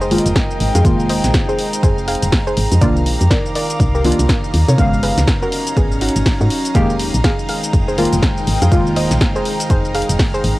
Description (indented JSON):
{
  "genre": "deep house",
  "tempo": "122 BPM",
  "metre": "4/4",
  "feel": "swing 60% on 16ths",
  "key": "F minor",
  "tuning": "A4 = 440 Hz",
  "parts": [
    { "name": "soft round pluck", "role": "melody", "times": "0.0-10.6 s", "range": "Cb4 to F5", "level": "-23 LUFS", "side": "equal", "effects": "chorus, cassette tape, analog delay" },
    { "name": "deep dark ambient pad", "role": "sustained chords", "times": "0.0-10.6 s", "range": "Gb3 to Bb5", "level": "-29 LUFS", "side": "right 1 dB", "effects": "chorus, built-in reverb, sidechain pumping, cassette tape" },
    { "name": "woody FM bass", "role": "bass", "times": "0.0-10.5 s", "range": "Eb1 to C3", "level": "-17 LUFS", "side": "equal", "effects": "sidechain pumping" },
    { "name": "punchy analog drum machine", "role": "drums", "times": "0.0-10.6 s", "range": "hi-hat, shaker, snare drum", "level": "-22 LUFS", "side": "equal", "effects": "none" },
    { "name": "airy breathy pad", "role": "texture", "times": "0.0-10.6 s", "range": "Eb3 to D6", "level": "-24 LUFS", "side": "equal", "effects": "chorus, sidechain pumping, cassette tape" },
    { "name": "string machine, violins", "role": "texture", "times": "0.0-10.6 s", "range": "Eb4 to F5", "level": "-32 LUFS", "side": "equal", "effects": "ensemble chorus, cassette tape" },
    { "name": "deep mellow chord stab", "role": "stabs", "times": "0.1-10.4 s", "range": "Db3 to F5", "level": "-19 LUFS", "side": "equal", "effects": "chorus, sidechain pumping, cassette tape, analog delay" },
    { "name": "electronic kick drum", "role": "drums", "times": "0.4-10.3 s", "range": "none", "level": "-17 LUFS", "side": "equal", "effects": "none" }
  ],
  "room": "light reverb",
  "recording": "home recording on cassette",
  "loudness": "-13 LUFS",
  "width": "side -18 dB against mid",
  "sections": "0.0-10.6 A section",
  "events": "none",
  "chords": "0.0 Fm11; 2.8 Cm11; 4.8 Abm11; 6.8 Fm11",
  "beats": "0.36 | 0.85 1.34 1.83 2.32 | 2.82 3.31 3.80 4.29 | 4.78 5.28 5.77 6.26 | 6.75 7.24 7.73 8.23 | 8.72 9.21 9.70 10.19"
}